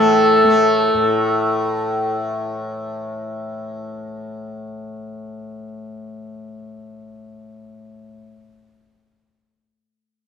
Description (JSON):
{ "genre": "indian classical, Hindustani", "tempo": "124 BPM", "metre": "4/4", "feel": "straight", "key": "unclear", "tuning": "A4 = 439 Hz", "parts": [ { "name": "bright reedy bansuri", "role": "melody", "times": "0.0-2.2 s", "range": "A4", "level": "-15 LUFS", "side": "equal", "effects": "none" }, { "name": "tanpura", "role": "drone", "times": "0.0-8.1 s", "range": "A2 to A3", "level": "-24 LUFS", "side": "left 2 dB", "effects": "none" } ], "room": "light reverb", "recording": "none", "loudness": "-16 LUFS", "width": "side -7 dB against mid", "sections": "0.0-1.4 A section", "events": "none", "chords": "none" }